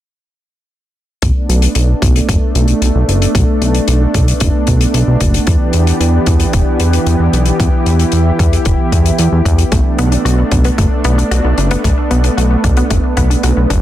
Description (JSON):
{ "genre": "synthwave", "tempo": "113 BPM", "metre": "4/4", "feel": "straight", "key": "B minor", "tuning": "A4 = 442 Hz", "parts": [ { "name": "lush unison pad", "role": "sustained chords", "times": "1.2-13.8 s", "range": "E3 to G4", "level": "-16 LUFS", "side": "right 1 dB", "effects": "chorus, sidechain pumping" }, { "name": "fat analog bass", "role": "bass", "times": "1.2-13.8 s", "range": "E1 to E2", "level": "-12 LUFS", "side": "equal", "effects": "none" }, { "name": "electronic kick drum", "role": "drums", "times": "1.2-13.8 s", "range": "none", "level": "-14 LUFS", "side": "equal", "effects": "none" }, { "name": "hi-hat", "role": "drums", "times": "1.2-13.8 s", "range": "none", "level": "-22 LUFS", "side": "left 6 dB", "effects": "none" }, { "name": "wide unison pluck", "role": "arpeggios", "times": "9.7-13.8 s", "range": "A3 to F#4", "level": "-20 LUFS", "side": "left 2 dB", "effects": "digital delay" } ], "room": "light reverb", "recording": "dense, heavily limited modern master", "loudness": "-10 LUFS", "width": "side -13 dB against mid", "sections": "1.2-13.8 A section", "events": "filter sweep on analog synth bass 1.2-13.8", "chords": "1.2 Bm7; 5.5 Em7; 9.7 Bm7", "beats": "| 1.23 1.76 2.29 2.82 | 3.35 3.88 4.41 4.94 | 5.47 6.00 6.53 7.07 | 7.60 8.13 8.66 9.19 | 9.72 10.25 10.78 11.31 | 11.84 12.38 12.91 13.44" }